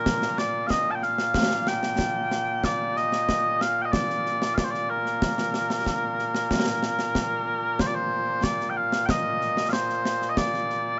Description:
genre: scottish traditional, Scottish pipe music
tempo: 93 BPM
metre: 4/4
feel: straight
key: Bb major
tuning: A4 = 440 Hz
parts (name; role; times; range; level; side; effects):
- mellow small bagpipes; melody; 0.0-11.0 s; Bb2 to A5; -27 LUFS; equal; none
- concert snare drum and concert bass drum; drums; 0.1-10.8 s; none; -31 LUFS; equal; none
room: light reverb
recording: nothing above 7.7 kHz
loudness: -25 LUFS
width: mono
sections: 0.0-7.8 A section; 7.8-11.0 B section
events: none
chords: none

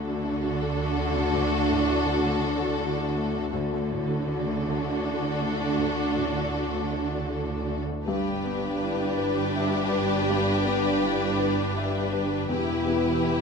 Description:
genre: cinematic, emotional film score for orchestra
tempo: 54 BPM (dotted quarters)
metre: 6/8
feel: rubato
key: G major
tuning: A4 = 440 Hz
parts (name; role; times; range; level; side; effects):
- warm symphonic violin section; melody; 0.0-13.4 s; A4 to B4; -33 LUFS; left 6 dB; none
- warm symphonic violin section; second line; 0.0-13.4 s; F#4 to G4; -31 LUFS; left 2 dB; none
- felt-muted upright piano; accompaniment; 0.0-13.4 s; D2 to E5; -30 LUFS; left 3 dB; none
- rich symphonic viola section; accompaniment; 0.0-13.4 s; D4 to E4; -30 LUFS; right 1 dB; none
- dark symphonic cello section; bass; 0.0-13.4 s; E2 to D3; -32 LUFS; right 4 dB; none
- warm symphonic double bass section; bass; 0.0-13.4 s; E1 to D2; -33 LUFS; right 4 dB; none
room: moderate concert hall reverb, RT60 2.2 s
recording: none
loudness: -24 LUFS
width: side -5 dB against mid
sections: 0.0-8.1 A section; 8.1-13.4 B section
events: none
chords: 0.0 D; 8.1 G6; 12.5 Em

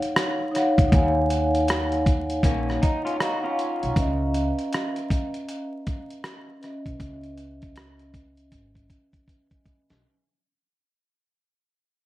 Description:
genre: lo-fi hip hop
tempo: 79 BPM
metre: 4/4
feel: swing 62% on 16ths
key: unclear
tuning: A4 = 440 Hz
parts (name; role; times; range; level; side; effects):
- vibraphone with soft mallets; accompaniment; 0.0-10.3 s; Db4 to Db6; -26 LUFS; equal; cassette tape, low-pass filter
- dusty soul sampler-style drum kit; drums; 0.0-10.0 s; hi-hat, kick drum, rim click, snare drum; -24 LUFS; equal; none
- upright bass; bass; 0.8-10.0 s; Ab1 to Eb2; -28 LUFS; equal; none
- electric guitar through a small old amp; second line; 2.4-3.9 s; Bb3 to Gb4; -31 LUFS; left 1 dB; analog chorus, low-pass filter, tape echo
room: moderate plate reverb, RT60 1.5 s, small room ambience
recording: vinyl crackle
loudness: -21 LUFS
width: side -16 dB against mid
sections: 0.0-10.0 A section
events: fade-out 0.0-10.0; filter sweep on vibraphone 0.0-10.0; drum fill 8.5-10.0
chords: 0.0 Ebm9; 4.0 Dbm9

